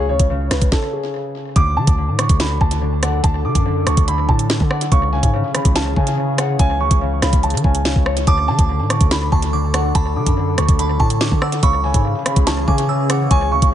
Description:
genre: hip hop, drill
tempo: 143 BPM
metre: 4/4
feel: half-time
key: unclear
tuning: A4 = 439 Hz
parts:
  - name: dark grand piano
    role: melody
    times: 0.0-13.7 s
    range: G#4 to D6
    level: -22 LUFS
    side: right 2 dB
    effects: tape echo
  - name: concert harp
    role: accompaniment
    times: 0.0-13.7 s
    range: C#3 to D5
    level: -24 LUFS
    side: left 3 dB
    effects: tape echo
  - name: long sustained 808-style bass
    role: bass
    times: 0.0-13.7 s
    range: C#2 to E3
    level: -20 LUFS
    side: equal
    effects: none
  - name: drill drum kit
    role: drums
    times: 0.2-13.7 s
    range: hi-hat, kick drum, rim click, snare drum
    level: -17 LUFS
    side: equal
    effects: tape echo
  - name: warbly tape-like pad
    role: sustained chords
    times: 2.0-13.7 s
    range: E3 to A4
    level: -26 LUFS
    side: left 1 dB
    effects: chorus, built-in reverb
  - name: glassy synth bell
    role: second line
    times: 8.3-13.7 s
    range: A5 to E6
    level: -27 LUFS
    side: right 4 dB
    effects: chorus, tremolo, tape echo
room: light reverb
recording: echo-heavy mix, nothing above 10.5 kHz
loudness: -14 LUFS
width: side -11 dB against mid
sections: 0.0-1.6 A section; 1.6-13.7 B section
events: stop 0.7-1.6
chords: 0.0 C#5; 1.6 D; 4.9 C#m; 8.3 D; 11.6 C#m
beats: 0.30 0.72 1.14 | 1.56 1.98 2.40 2.82 | 3.24 3.66 4.08 4.50 | 4.92 5.33 5.75 6.17 | 6.59 7.01 7.43 7.85 | 8.27 8.69 9.11 9.53 | 9.95 10.37 10.79 11.21 | 11.63 12.05 12.47 12.89 | 13.31 13.73

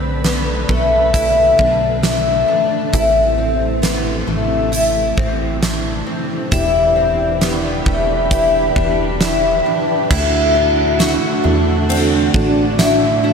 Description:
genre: dream pop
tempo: 67 BPM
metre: 4/4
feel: straight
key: D mixolydian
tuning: A4 = 439 Hz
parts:
  - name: ensemble organ-string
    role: sustained chords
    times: 0.0-13.3 s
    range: C3 to B4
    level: -19 LUFS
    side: right 1 dB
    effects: ensemble chorus
  - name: fingerpicked twelve-string acoustic guitar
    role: arpeggios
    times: 0.0-13.3 s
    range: A3 to F#4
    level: -17 LUFS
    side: left 3 dB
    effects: analog chorus, ping-pong delay
  - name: plucky analog bass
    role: bass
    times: 0.0-13.3 s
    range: E1 to E2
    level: -22 LUFS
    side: right 1 dB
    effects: none
  - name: huge arena drum kit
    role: drums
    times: 0.2-13.0 s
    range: crash cymbal, hi-hat, kick drum, ride cymbal, snare drum, tambourine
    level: -20 LUFS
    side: right 1 dB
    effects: none
room: wet lush hall reverb, RT60 2.2 s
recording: bright 1980s-style digital production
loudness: -13 LUFS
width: side -6 dB against mid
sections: 0.0-10.1 A section; 10.1-13.3 B section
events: none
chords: 0.0 Bm7; 2.9 Am; 6.5 Em7; 10.1 Dadd9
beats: 0.25 1.14 2.04 | 2.93 3.83 4.72 5.62 | 6.51 7.41 8.31 9.20 | 10.10 10.99 11.89 12.78

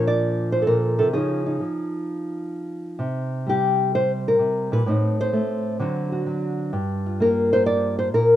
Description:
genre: solo jazz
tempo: 128 BPM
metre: 4/4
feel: swing 68% on 8ths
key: G minor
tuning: A4 = 437 Hz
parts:
  - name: nylon-string guitar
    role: solo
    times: 0.0-8.4 s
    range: G2 to D5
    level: -20 LUFS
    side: equal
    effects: none
room: light reverb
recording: recorded outdoors, with no room sound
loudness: -20 LUFS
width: side -12 dB against mid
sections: 0.0-8.4 A section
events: none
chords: 0.0 Bbadd9; 1.1 C#add9; 3.0 C5; 4.9 Adim; 5.8 D7; 6.7 Gm7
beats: 0.18 0.65 | 1.12 1.59 2.05 2.52 | 2.99 3.46 3.92 4.39 | 4.86 5.33 5.79 6.26 | 6.73 7.20 7.66 8.13

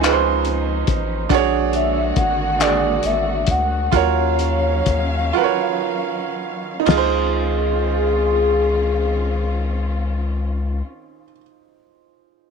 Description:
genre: slow six-eight R&B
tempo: 38-47 BPM (dotted quarters)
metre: 6/8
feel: straight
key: Db major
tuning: A4 = 440 Hz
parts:
  - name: warm velvety synth lead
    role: melody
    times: 0.0-10.8 s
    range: Ab4 to Ab5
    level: -21 LUFS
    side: left 3 dB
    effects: chorus, slapback echo
  - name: clear grand piano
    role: accompaniment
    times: 0.0-12.5 s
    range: D4 to D5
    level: -21 LUFS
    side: right 13 dB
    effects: none
  - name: dark studio string section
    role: sustained chords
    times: 0.0-10.8 s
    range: D3 to F5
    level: -28 LUFS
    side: left 2 dB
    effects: none
  - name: round analog bass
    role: bass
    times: 0.0-10.8 s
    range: Ab1 to Eb2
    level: -22 LUFS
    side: left 2 dB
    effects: transformer saturation
  - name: cloth-damped thuddy drum kit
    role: drums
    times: 0.0-7.1 s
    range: crash cymbal, handclaps, hi-hat, kick drum, snare drum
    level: -22 LUFS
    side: left 6 dB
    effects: none
room: light reverb, small room ambience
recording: 1960s-style stereo with parts hard left and right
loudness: -17 LUFS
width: side -5 dB against mid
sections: 0.0-6.9 A section; 6.9-10.1 B section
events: slowing down 1.3-6.9; break 5.3-6.9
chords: 0.0 Dbmaj9; 1.3 Bb7alt; 3.9 Ebm9; 6.9 Dbmaj9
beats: 0.02 | 1.30 2.59 | 3.93 5.34 | 6.87 8.46

